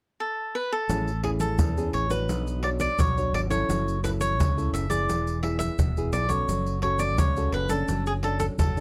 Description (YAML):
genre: samba and choro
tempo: 86 BPM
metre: 4/4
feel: straight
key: A major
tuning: A4 = 440 Hz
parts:
  - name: cavaquinho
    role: melody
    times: 0.2-8.8 s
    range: G#4 to E5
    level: -31 LUFS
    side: equal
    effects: none
  - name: nylon-string guitar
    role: accompaniment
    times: 0.9-8.8 s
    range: B2 to C#5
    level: -34 LUFS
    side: equal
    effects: none
  - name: fingered electric bass with an envelope filter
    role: bass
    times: 0.9-8.8 s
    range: E1 to E2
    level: -31 LUFS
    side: equal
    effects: none
  - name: egg shaker, surdo and pandeiro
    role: percussion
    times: 0.9-8.8 s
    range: none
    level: -31 LUFS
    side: equal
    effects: none
room: light reverb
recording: dry, close 1970s-style studio recording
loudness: -26 LUFS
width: mono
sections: 0.9-8.8 A section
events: none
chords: 0.0 N.C.; 0.9 Amaj7; 2.3 Bmadd9; 3.7 F#m7; 5.1 E; 6.5 F#m